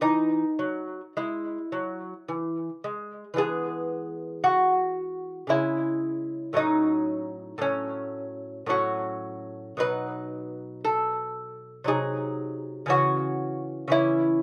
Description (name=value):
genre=classical, baroque-style dance for lute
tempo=52-59 BPM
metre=3/4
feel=rubato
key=E major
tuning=A4 = 440 Hz
part: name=lute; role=solo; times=0.0-14.4 s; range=A2 to B4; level=-28 LUFS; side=equal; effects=none
room=little or no reverb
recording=recorded outdoors, with no room sound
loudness=-28 LUFS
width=mono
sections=0.0-3.4 A section; 3.4-14.4 B section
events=none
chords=0.0 E; 5.5 C#m; 6.6 F#m/A; 9.8 B; 11.9 G#7/B#; 12.9 C#m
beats=| 0.03 1.17 2.29 | 3.39 4.45 5.51 | 6.56 7.60 8.68 | 9.78 10.83 11.87 | 12.91 13.94